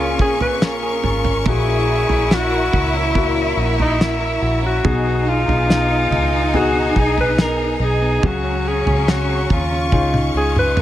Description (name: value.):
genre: pop ballad.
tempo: 71 BPM.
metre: 4/4.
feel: straight.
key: F# major.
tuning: A4 = 440 Hz.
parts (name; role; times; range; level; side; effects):
breathy alto saxophone; melody; 0.0-10.8 s; D#4 to B4; -20 LUFS; equal; none.
rich studio cello section; second line; 0.0-10.8 s; C#4 to E4; -24 LUFS; left 1 dB; none.
felt-muted upright piano; accompaniment; 0.0-10.8 s; A#2 to G#4; -25 LUFS; left 4 dB; none.
warm studio string section; sustained chords; 0.0-10.8 s; G#4 to C#6; -27 LUFS; left 2 dB; none.
direct-recorded clean electric guitar; arpeggios; 0.0-10.8 s; A#2 to A#4; -28 LUFS; right 5 dB; none.
vintage muted fingered electric bass; bass; 0.0-10.8 s; G#1 to D#2; -22 LUFS; equal; none.
damped 70s drum kit; drums; 0.2-10.8 s; kick drum, snare drum, toms; -19 LUFS; right 1 dB; none.
room: light reverb, small room ambience.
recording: none.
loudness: -15 LUFS.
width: side -12 dB against mid.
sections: 0.0-10.8 A section.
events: drum fill 9.9-10.8.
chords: 0.0 A#m7; 1.5 F#7/A#; 4.8 B6; 8.2 C#sus4; 9.9 C#add9.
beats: 0.62 | 1.47 2.31 3.15 4.00 | 4.84 5.69 6.54 7.38 | 8.23 9.07 9.92 10.76.